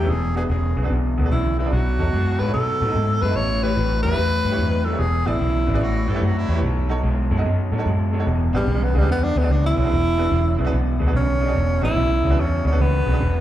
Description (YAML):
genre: electric blues shuffle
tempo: 146 BPM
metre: 4/4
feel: swing 66% on 8ths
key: E mixolydian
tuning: A4 = 443 Hz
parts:
  - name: breathy tenor saxophone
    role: melody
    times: 0.0-6.1, 8.6-13.4 s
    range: G3 to C#5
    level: -24 LUFS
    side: equal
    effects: slapback echo, tape echo
  - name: bright baby grand piano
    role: accompaniment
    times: 0.0-13.2 s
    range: C#4 to E5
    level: -30 LUFS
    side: right 4 dB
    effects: slapback echo
  - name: electric guitar through a small old amp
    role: riff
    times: 0.0-13.4 s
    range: E2 to G#3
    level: -26 LUFS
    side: left 2 dB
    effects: slapback echo
  - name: vintage muted fingered electric bass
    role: bass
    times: 0.0-13.4 s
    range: E1 to B2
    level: -20 LUFS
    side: equal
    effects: none
  - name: clear harmonica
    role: second line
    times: 5.8-6.6 s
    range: E4 to A4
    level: -33 LUFS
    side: right 2 dB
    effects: overdrive, slapback echo
room: studio reverb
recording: live gig heard through the venue's PA, club reverb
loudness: -18 LUFS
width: side -12 dB against mid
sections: 0.0-8.3 A section; 8.3-13.4 B section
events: tenor saxophone solo 8.3-13.4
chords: 0.1 E7; 1.7 B7; 3.4 A7; 5.0 E7; 5.8 A7; 6.6 B7; 8.3 E7